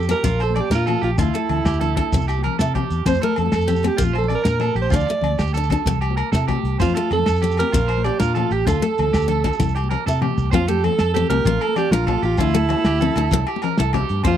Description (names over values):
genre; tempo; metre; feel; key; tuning
highlife guitar band; 128 BPM (dotted quarters); 12/8; straight; F major; A4 = 440 Hz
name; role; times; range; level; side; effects
clear alto saxophone; melody; 0.0-14.4 s; E4 to D5; -22 LUFS; right 3 dB; none
picked steel-string acoustic guitar; accompaniment; 0.0-14.3 s; A3 to E4; -26 LUFS; left 6 dB; none
electric guitar at the edge of break-up; arpeggios; 0.0-14.4 s; F4 to D5; -26 LUFS; right 11 dB; tape echo
fingered electric bass; bass; 0.0-14.4 s; A1 to C3; -22 LUFS; equal; none
shekere; percussion; 0.0-10.4 s; none; -29 LUFS; right 1 dB; none
warm soul drum kit; drums; 0.1-14.3 s; hi-hat, kick drum, snare drum, toms; -23 LUFS; equal; none
agogo bells; percussion; 0.1-14.4 s; none; -33 LUFS; left 10 dB; none
congas; percussion; 0.1-14.3 s; none; -27 LUFS; left 11 dB; none
room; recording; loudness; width
small room ambience; dry, close 1970s-style studio recording; -17 LUFS; side -10 dB against mid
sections
0.0-10.5 A section; 10.5-14.4 B section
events
drum fill 10.1-10.5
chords
0.3 Bbadd9; 1.2 Dmadd9; 2.1 C; 3.1 F; 4.0 Bbadd9; 4.9 Dm; 5.9 C; 6.8 F; 7.7 Bbadd9; 8.7 Dm; 9.6 C; 10.5 F; 11.5 Bb; 12.4 Dmadd9; 13.3 C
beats
0.26 0.72 | 1.19 1.66 2.13 2.60 | 3.06 3.53 4.00 4.47 | 4.93 5.40 5.87 6.34 | 6.81 7.27 7.74 8.21 | 8.68 9.14 9.61 10.07 | 10.54 11.01 11.47 11.93 | 12.40 12.86 13.32 13.79 | 14.25